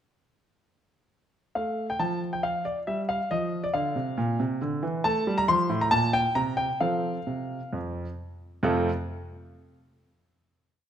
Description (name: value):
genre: classical-period piano sonatina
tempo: 136 BPM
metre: 4/4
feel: straight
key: F major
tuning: A4 = 440 Hz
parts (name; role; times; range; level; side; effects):
- clear grand piano; solo; 1.6-8.9 s; F2 to C6; -25 LUFS; equal; none
room: moderate recital hall reverb, RT60 1.6 s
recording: none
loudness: -25 LUFS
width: side -9 dB against mid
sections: 1.6-8.6 A section; 8.6-10.4 final chord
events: none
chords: 1.6 F; 3.3 F5; 4.2 Bb; 5.0 F; 5.9 N.C.; 6.8 F